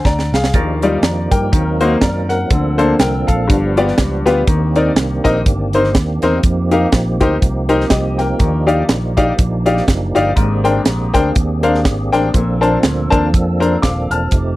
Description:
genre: uptempo gospel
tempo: 122 BPM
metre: 4/4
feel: swing 58% on 8ths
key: Bb major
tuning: A4 = 440 Hz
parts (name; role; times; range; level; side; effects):
- clear upright piano; accompaniment; 0.0-14.6 s; G2 to F6; -16 LUFS; left 2 dB; none
- fingered electric bass; bass; 0.1-14.6 s; Eb1 to G2; -19 LUFS; equal; none
- crisp fusion drum kit; drums; 0.1-14.5 s; hi-hat, kick drum, snare drum; -15 LUFS; right 1 dB; none
- percussive tonewheel organ; sustained chords; 0.5-14.6 s; Eb3 to Bb4; -21 LUFS; right 2 dB; slow rotary speaker, overdrive, chorus vibrato
room: little or no reverb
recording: dry, close 1970s-style studio recording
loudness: -12 LUFS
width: side -17 dB against mid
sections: 0.0-14.6 A section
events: drum fill 0.1-0.5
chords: 0.0 Bb9; 0.5 Ebmaj9; 1.5 Ebm6; 2.5 Bbmaj9/D; 3.5 G7; 4.5 Cm9; 6.4 F9sus4; 8.4 Ebmaj9; 10.4 Abmaj9#11; 12.3 Bbmaj9

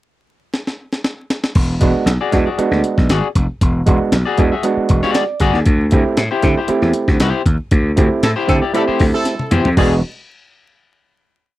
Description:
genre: funk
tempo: 117 BPM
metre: 4/4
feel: straight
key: E mixolydian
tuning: A4 = 442 Hz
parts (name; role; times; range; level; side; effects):
- breakbeat sampler-style drum kit; drums; 0.5-9.9 s; crash cymbal, hi-hat, kick drum, snare drum, toms; -17 LUFS; equal; none
- gritty slap bass; bass; 1.6-10.0 s; E1 to D3; -17 LUFS; equal; overdrive
- overdriven clav; stabs; 1.8-10.0 s; G#3 to D5; -17 LUFS; right 3 dB; none
- electric guitar at the edge of break-up; accompaniment; 2.2-9.9 s; E4 to E5; -19 LUFS; left 6 dB; analog chorus
- clear horn section; second line; 8.2-10.0 s; D3 to A4; -21 LUFS; right 2 dB; none
room: little or no reverb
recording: dry, close 1970s-style studio recording, vinyl crackle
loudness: -13 LUFS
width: side -16 dB against mid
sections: 0.0-1.6 pickup bar; 1.6-9.8 groove; 9.8-11.6 final chord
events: drum fill 0.5-1.6, 9.3-9.8; clav fill 4.9-5.7; band accent 7.7-9.8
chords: 0.0 N.C.; 1.6 E9; 5.7 D9sus4; 9.8 E9

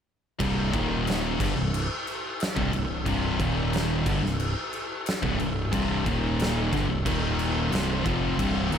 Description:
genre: stoner and doom metal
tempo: 90 BPM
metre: 4/4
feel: straight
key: C minor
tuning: A4 = 440 Hz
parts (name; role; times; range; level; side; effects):
- thick fuzz guitar; riff; 0.4-8.8 s; C2 to F3; -29 LUFS; left 8 dB; distortion
- thick fuzz guitar; riff; 0.4-8.8 s; C2 to F3; -30 LUFS; right 8 dB; distortion
- tight distorted guitar; riff; 0.4-8.8 s; C2 to F3; -31 LUFS; equal; distortion
- growling picked electric bass; bass; 0.4-8.8 s; C1 to G1; -32 LUFS; equal; overdrive
- oversized low-tuned drum kit; drums; 0.4-8.8 s; crash cymbal, kick drum, snare drum; -30 LUFS; equal; none
room: light reverb, studio reverb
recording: none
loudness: -24 LUFS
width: side -8 dB against mid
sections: 0.4-8.8 A section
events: none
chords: 0.4 C5; 0.7 Eb5; 1.4 C5; 3.4 Eb5; 4.1 C5; 6.1 Eb5; 6.7 C5; 7.1 Eb5; 7.7 C5

